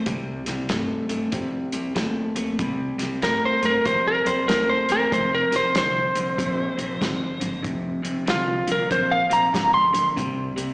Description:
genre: electric blues shuffle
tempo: 95 BPM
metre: 4/4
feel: swing 63% on 8ths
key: C minor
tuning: A4 = 443 Hz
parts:
  - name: electric slide guitar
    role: melody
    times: 0.0-10.1 s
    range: F4 to C6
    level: -20 LUFS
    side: equal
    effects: slapback echo
  - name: electric guitar through a small old amp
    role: riff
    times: 0.0-10.7 s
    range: F2 to A3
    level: -27 LUFS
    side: equal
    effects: slapback echo
  - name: upright bass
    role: bass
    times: 0.1-10.7 s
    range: F1 to G2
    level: -32 LUFS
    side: equal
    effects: none
  - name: warm soul drum kit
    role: drums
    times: 0.1-10.7 s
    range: hi-hat, kick drum, snare drum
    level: -29 LUFS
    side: equal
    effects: none
room: light reverb, small room ambience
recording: live gig heard through the venue's PA, recital hall reverb, small speaker sound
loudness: -20 LUFS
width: side -26 dB against mid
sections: 0.0-10.7 A section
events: none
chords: 0.0 Cm; 5.1 Fm; 10.2 C5

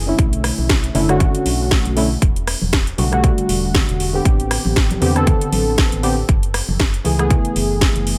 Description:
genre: deep house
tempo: 118 BPM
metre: 4/4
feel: swing 56% on 16ths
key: F# phrygian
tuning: A4 = 438 Hz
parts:
  - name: warm analog keys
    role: stabs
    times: 0.0-8.2 s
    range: D3 to A4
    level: -22 LUFS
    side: equal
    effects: chorus, vintage 12-bit sampler grit, sidechain pumping, low-pass filter, dub echo
  - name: organ-like FM bass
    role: bass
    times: 0.0-8.2 s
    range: E1 to E2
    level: -24 LUFS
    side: equal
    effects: none
  - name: electronic kick drum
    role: drums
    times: 0.2-7.9 s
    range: none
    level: -18 LUFS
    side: equal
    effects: none
  - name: house drum kit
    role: drums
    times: 0.2-8.2 s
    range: hi-hat, rim click, snare drum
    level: -24 LUFS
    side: equal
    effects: none
  - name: congas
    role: percussion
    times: 0.6-7.4 s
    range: none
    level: -28 LUFS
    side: equal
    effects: none
room: little or no reverb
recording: none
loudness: -17 LUFS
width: mono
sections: 0.0-8.2 A section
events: none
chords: 0.2 Bm11; 2.2 Em11; 4.3 Am11; 6.3 F#m11

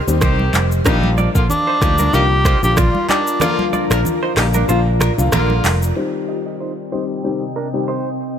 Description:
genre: afrobeats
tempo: 94 BPM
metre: 4/4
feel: swing 55% on 16ths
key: C minor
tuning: A4 = 440 Hz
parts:
  - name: glassy FM pad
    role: sustained chords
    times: 0.0-8.4 s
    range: C3 to C6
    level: -25 LUFS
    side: left 2 dB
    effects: ensemble chorus, built-in reverb, low-pass filter
  - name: clear concert grand piano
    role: accompaniment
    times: 0.1-7.9 s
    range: D3 to G4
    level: -23 LUFS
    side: left 5 dB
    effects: low-pass filter
  - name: fingered electric bass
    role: bass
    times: 0.1-5.9 s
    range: F1 to Eb2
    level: -17 LUFS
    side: equal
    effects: none
  - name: afro-pop drum kit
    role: drums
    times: 0.1-6.0 s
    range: finger snaps, handclaps, hi-hat, kick drum, rim click, shaker, toms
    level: -20 LUFS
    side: equal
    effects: none
  - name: warm horn section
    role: second line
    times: 0.2-5.8 s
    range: D3 to Bb4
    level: -25 LUFS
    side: left 2 dB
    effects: none
  - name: direct-recorded clean electric guitar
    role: riff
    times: 0.2-8.1 s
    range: D4 to Eb5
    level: -26 LUFS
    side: right 6 dB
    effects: lush chorus, low-pass filter, digital delay
  - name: congas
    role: percussion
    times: 0.2-5.8 s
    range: none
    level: -24 LUFS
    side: right 3 dB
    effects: none
  - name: breathy tenor saxophone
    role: melody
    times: 1.5-3.7 s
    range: D4 to G4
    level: -18 LUFS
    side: equal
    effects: none
room: light reverb, small room ambience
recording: none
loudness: -14 LUFS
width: side -8 dB against mid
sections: 0.0-6.0 A section; 6.0-8.4 B section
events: kick muted 3.4-6.0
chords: 0.0 Cm

